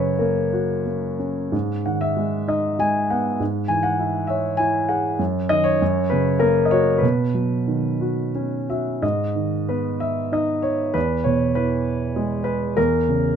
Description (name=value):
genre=classical, lyrical solo piano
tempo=86-103 BPM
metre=3/4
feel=rubato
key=B major, G# minor from 9.0 s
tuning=A4 = 437 Hz
part: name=warm baby grand piano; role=solo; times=0.0-13.4 s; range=E2 to G#5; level=-19 LUFS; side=equal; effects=none
room=light reverb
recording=close, detailed microphones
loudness=-19 LUFS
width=side -8 dB against mid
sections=0.0-9.0 A section; 9.0-13.4 B section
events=none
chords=0.0 F#; 1.5 G#m; 3.4 C#m/G#; 5.2 D#m7/F#; 5.8 F#; 7.0 Badd9; 9.0 G#m; 11.0 E; 12.8 C#m/E